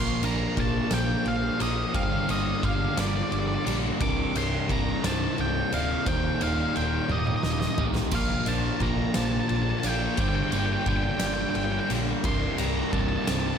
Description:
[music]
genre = post-rock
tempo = 58 BPM (dotted quarters)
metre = 6/8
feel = straight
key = C minor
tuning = A4 = 441 Hz
[part]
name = octave-fuzz lead guitar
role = melody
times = 0.0-13.6 s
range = D5 to D6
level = -31 LUFS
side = equal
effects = distortion, slapback echo, analog delay
[part]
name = lush unison pad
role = sustained chords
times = 0.0-13.6 s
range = C3 to F5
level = -42 LUFS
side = equal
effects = none
[part]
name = clean electric guitar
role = arpeggios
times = 0.0-13.6 s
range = C2 to Bb4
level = -38 LUFS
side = left 3 dB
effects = none
[part]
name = vibraphone with medium hard mallets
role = arpeggios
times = 0.0-13.6 s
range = Bb4 to D6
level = -40 LUFS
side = right 5 dB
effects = slapback echo, analog delay
[part]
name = crunchy overdriven guitar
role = riff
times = 0.0-13.6 s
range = C2 to Bb3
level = -31 LUFS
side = left 9 dB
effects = slapback echo
[part]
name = overdriven electric guitar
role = riff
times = 0.0-13.6 s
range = C2 to Bb3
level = -31 LUFS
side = right 9 dB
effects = phaser, slapback echo
[part]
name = fingered electric bass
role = bass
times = 0.0-13.5 s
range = C1 to Bb1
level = -31 LUFS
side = equal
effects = none
[part]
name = oversized low-tuned drum kit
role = drums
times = 0.2-13.4 s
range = crash cymbal, kick drum, ride cymbal, snare drum, toms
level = -30 LUFS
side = equal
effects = none
[sound]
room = moderate lush hall reverb, RT60 2.7 s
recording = big arena sound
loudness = -24 LUFS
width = side -7 dB against mid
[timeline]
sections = 0.0-13.6 A section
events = drum fill 7.1-8.1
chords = 0.0 Bb6; 2.0 Gm7; 4.0 Cm7; 6.1 Ebmaj7; 8.1 Bb6; 10.2 Gm7; 12.2 Cm7

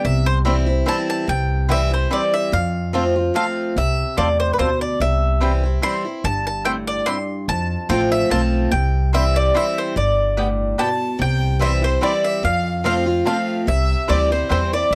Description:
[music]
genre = bluegrass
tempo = 145 BPM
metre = 3/4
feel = swing 53% on 8ths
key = C major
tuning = A4 = 440 Hz
[part]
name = mandolin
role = melody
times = 0.0-14.9 s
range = B4 to C6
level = -24 LUFS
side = equal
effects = none
[part]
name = picked steel-string acoustic guitar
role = accompaniment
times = 0.0-14.9 s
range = F2 to F4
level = -26 LUFS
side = equal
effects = none
[part]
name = upright bass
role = bass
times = 0.0-14.9 s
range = G1 to F2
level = -23 LUFS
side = equal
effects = none
[part]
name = mandolin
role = stabs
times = 0.5-14.6 s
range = B3 to A5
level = -26 LUFS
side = equal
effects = none
[part]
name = clear fiddle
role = second line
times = 10.8-14.9 s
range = C5 to A5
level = -32 LUFS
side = equal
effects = none
[sound]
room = little or no reverb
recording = dry, close 1970s-style studio recording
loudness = -19 LUFS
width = mono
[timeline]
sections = 0.0-1.3 A section; 1.3-14.9 B section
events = mandolin solo 0.0-1.3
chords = 0.0 C; 2.5 F; 5.0 C; 7.5 F; 8.7 C; 10.0 G; 11.2 C; 12.4 F; 13.7 C

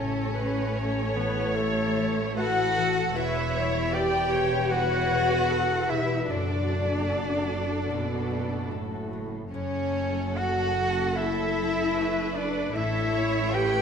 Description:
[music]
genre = cinematic, emotional film score for orchestra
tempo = 75 BPM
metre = 4/4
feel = rubato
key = unclear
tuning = A4 = 439 Hz
[part]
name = rich cello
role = melody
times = 0.0-13.8 s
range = A3 to G4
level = -31 LUFS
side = right 3 dB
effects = none
[part]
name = rich studio violin section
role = melody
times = 0.0-13.8 s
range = A4 to C#5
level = -37 LUFS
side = left 2 dB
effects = none
[part]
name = clear clarinet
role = second line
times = 0.0-13.8 s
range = A4 to G5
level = -32 LUFS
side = left 1 dB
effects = none
[part]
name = warm studio violin section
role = second line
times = 0.0-13.8 s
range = A4 to G5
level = -34 LUFS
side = left 2 dB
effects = none
[part]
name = rich studio viola section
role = accompaniment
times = 0.0-13.8 s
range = F#4 to D5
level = -34 LUFS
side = right 1 dB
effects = none
[part]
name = warm French horn section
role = sustained chords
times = 0.0-13.8 s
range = A3 to G4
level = -31 LUFS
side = left 4 dB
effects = none
[part]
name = concert harp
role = arpeggios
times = 0.0-13.8 s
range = E2 to A4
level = -36 LUFS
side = left 7 dB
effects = none
[part]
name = rich studio cello section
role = bass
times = 0.0-13.8 s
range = E2 to B2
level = -34 LUFS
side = right 3 dB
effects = none
[part]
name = rich studio double bass section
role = bass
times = 0.0-13.8 s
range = E1 to A1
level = -34 LUFS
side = right 3 dB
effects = none
[sound]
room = wet scoring stage reverb, RT60 1.5 s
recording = none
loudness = -24 LUFS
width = side -7 dB against mid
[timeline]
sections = 0.0-13.8 A section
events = none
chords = 0.0 A; 3.2 Em; 6.3 D/F#; 9.5 F#m; 12.8 A

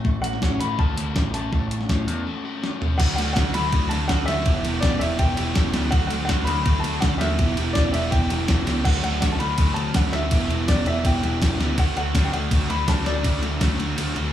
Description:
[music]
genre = indie rock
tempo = 164 BPM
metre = 4/4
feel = straight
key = D major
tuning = A4 = 439 Hz
[part]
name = crunchy overdriven guitar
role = riff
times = 0.0-14.3 s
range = D3 to A4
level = -29 LUFS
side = left 8 dB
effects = none
[part]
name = crunchy overdriven guitar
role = riff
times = 0.0-14.3 s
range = D3 to A4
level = -28 LUFS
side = right 7 dB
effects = wide subtle chorus
[part]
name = growling picked electric bass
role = bass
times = 0.0-14.3 s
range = E1 to A2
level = -26 LUFS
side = equal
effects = overdrive
[part]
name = crisp 8-bit digital drum machine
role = drums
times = 0.0-14.2 s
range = crash cymbal, hi-hat, kick drum, ride cymbal, snare drum, toms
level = -23 LUFS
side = equal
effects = none
[part]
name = warm upright piano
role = melody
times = 0.2-13.8 s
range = D5 to B5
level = -28 LUFS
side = left 1 dB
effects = digital delay
[sound]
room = digital ambience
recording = small room ambience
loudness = -20 LUFS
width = side -11 dB against mid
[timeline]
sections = 0.0-3.0 A section; 3.0-14.3 B section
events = break 2.3-3.0, 14.0-14.3; drum fill 2.6-3.0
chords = 0.0 F#m/A; 3.0 D; 4.5 Em; 5.9 D; 7.4 Em; 8.9 D; 10.3 Em; 11.8 D

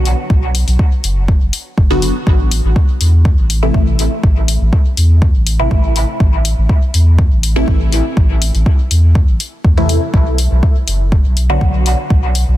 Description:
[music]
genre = dub techno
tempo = 122 BPM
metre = 4/4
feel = straight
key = unclear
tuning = A4 = 440 Hz
[part]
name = filtered dub chord stab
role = stabs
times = 0.0-12.6 s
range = C3 to F#4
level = -20 LUFS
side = equal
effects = phaser, sidechain pumping, dub echo
[part]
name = warm sub bass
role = bass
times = 0.0-12.6 s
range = F#1 to E2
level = -13 LUFS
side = equal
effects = sidechain pumping
[part]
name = electronic hi-hat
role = drums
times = 0.1-12.5 s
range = none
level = -20 LUFS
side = left 4 dB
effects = overdrive
[part]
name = electronic kick drum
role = drums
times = 0.3-12.2 s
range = none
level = -12 LUFS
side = equal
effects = overdrive
[sound]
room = digital ambience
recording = dense, heavily limited modern master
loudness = -10 LUFS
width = side -14 dB against mid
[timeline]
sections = 0.0-12.6 A section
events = none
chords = 0.0 Bm; 2.3 Am; 10.1 Bm

